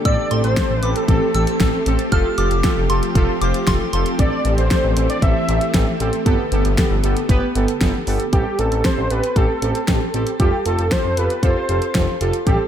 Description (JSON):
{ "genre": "synth-pop", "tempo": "116 BPM", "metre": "4/4", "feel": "straight", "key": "A minor", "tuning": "A4 = 444 Hz", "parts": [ { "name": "string machine, violas", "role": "sustained chords", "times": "0.0-8.3 s", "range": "D3 to G4", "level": "-26 LUFS", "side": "left 1 dB", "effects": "ensemble chorus, shimmer reverb" }, { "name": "wide unison lead", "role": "melody", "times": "0.1-12.6 s", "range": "G4 to E5", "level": "-23 LUFS", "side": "right 1 dB", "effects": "ping-pong delay, shimmer reverb" }, { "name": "soft synth bell", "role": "second line", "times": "0.1-4.0 s", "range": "C6 to F6", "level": "-27 LUFS", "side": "equal", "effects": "chorus, phaser, ping-pong delay, shimmer reverb" }, { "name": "analog synth brass", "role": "accompaniment", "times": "0.1-12.6 s", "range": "B3 to C5", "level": "-23 LUFS", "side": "right 2 dB", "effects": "chorus, shimmer reverb" }, { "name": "smooth synth bass", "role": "bass", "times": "0.1-12.6 s", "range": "F1 to A1", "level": "-21 LUFS", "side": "equal", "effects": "none" }, { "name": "pop drum kit", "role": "drums", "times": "0.1-12.6 s", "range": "hi-hat, kick drum, snare drum", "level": "-20 LUFS", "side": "equal", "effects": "gated reverb" } ], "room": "light reverb", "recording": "none", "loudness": "-16 LUFS", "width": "side -9 dB against mid", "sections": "0.1-8.3 A section; 8.3-12.7 B section", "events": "none", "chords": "0.1 Am7; 2.1 Fadd9; 4.2 Am7; 6.3 Gadd9; 8.3 Am7; 10.4 Fadd9" }